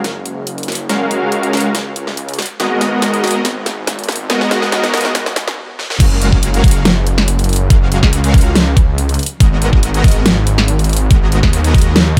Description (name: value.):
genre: future bass.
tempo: 141 BPM.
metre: 4/4.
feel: half-time.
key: F# major.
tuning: A4 = 440 Hz.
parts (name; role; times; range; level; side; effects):
detuned saw bass; bass; 0.0-12.2 s; F#1 to D#2; -19 LUFS; equal; chorus, sidechain pumping, high-pass filter.
dubstep drum kit; drums; 0.0-12.2 s; crash cymbal, hi-hat, snare drum; -20 LUFS; equal; overdrive, high-pass filter on snare, high-pass filter on hats, high-pass filter on cymbals, high-pass filter on room.
supersaw chords; riff; 0.9-11.9 s; G#3 to E#5; -21 LUFS; equal; analog chorus, vintage 12-bit sampler grit, sidechain pumping, low-pass filter, digital delay.
electronic kick drum; drums; 6.0-12.2 s; none; -12 LUFS; equal; overdrive.
room: light reverb.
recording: high-pass filter.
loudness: -14 LUFS.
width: mono.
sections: 0.0-6.0 A section; 6.0-12.2 B section.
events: build-up 0.0-6.0; drum fill 0.0-5.6, 5.8; filter sweep on supersaw synth 0.0-6.0; stop 5.6-6.0; drop 6.0-12.2.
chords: 0.0 F#maj9; 2.4 G#m9; 6.0 F#maj9; 9.2 G#m9.